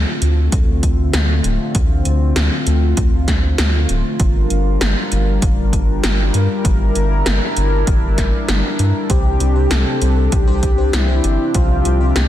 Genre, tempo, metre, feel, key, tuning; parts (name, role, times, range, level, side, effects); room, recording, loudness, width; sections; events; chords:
synthwave; 98 BPM; 4/4; straight; D minor; A4 = 441 Hz
chorused pulse-width pad; sustained chords; 0.0-12.3 s; C3 to Bb4; -21 LUFS; left 1 dB; sidechain pumping
round analog bass; bass; 0.0-12.3 s; D1 to G2; -16 LUFS; equal; sidechain pumping
80s electronic pad drums; drums; 0.2-12.3 s; hi-hat, snare drum; -22 LUFS; equal
electronic kick drum; drums; 0.5-11.7 s; -16 LUFS; equal
wide unison lead; melody; 9.1-12.3 s; E4 to A4; -21 LUFS; left 1 dB; wide subtle chorus, ping-pong delay
FM electric piano with soft pad layer; stabs; 9.1-12.3 s; C3 to C5; -26 LUFS; left 3 dB; chorus, phaser, cassette tape
light reverb, digital ambience; dense, heavily limited modern master; -14 LUFS; side -12 dB against mid
0.0-12.3 A section
0.0 Dm7; 4.2 Gm7; 9.1 Csus2